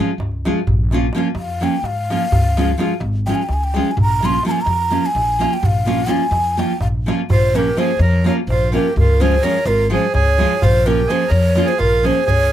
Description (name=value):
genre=balkan folk, Balkan wedding band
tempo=253 BPM (eighths)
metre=7/8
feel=straight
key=Bb minor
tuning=A4 = 440 Hz
part: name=nylon-string guitar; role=accompaniment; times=0.0-12.2 s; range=F3 to F4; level=-19 LUFS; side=right 1 dB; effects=none
part: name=upright bass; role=bass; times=0.2-12.5 s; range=Ab1 to Ab2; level=-18 LUFS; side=equal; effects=none
part: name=darbuka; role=percussion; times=0.2-12.5 s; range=none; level=-21 LUFS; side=equal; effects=none
part: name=breathy mellow ney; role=melody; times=1.4-12.5 s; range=Bb4 to C6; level=-19 LUFS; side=equal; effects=none
part: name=accordion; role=second line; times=7.3-12.5 s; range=F4 to Bb4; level=-23 LUFS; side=right 6 dB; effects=none
room=light reverb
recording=none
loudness=-14 LUFS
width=side -11 dB against mid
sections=0.0-7.3 A section; 7.3-12.5 B section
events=ney solo 0.0-7.3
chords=0.0 Db; 0.7 Bbm; 2.3 Db; 4.0 Bbm; 9.0 Db; 10.6 Bbm